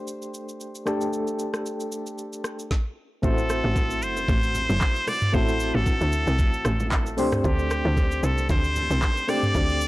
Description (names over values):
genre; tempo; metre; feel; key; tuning
amapiano; 114 BPM; 4/4; swing 55% on 16ths; A dorian; A4 = 441 Hz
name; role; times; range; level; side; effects
soft electric-piano-like synth keys; accompaniment; 0.0-9.9 s; A3 to D5; -28 LUFS; left 1 dB; chorus, tremolo
smooth R&B drum kit; drums; 0.1-9.9 s; handclaps, hi-hat, kick drum, rim click, shaker, snare drum, toms; -25 LUFS; equal; none
trumpet with straight mute; melody; 3.2-9.9 s; G4 to D5; -27 LUFS; equal; analog delay
tight log drum bass; bass; 3.2-9.9 s; F#1 to D2; -25 LUFS; equal; transformer saturation
congas and bongos; percussion; 3.2-9.7 s; none; -37 LUFS; right 2 dB; none
room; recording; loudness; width
little or no reverb; dry, gritty hardware recording, transformer saturation, cassette tape; -22 LUFS; side -18 dB against mid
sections
0.0-3.2 A section; 3.2-9.9 B section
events
drop 3.2-9.9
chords
0.0 D7sus4; 3.0 N.C.; 3.2 Am6; 7.2 D7sus4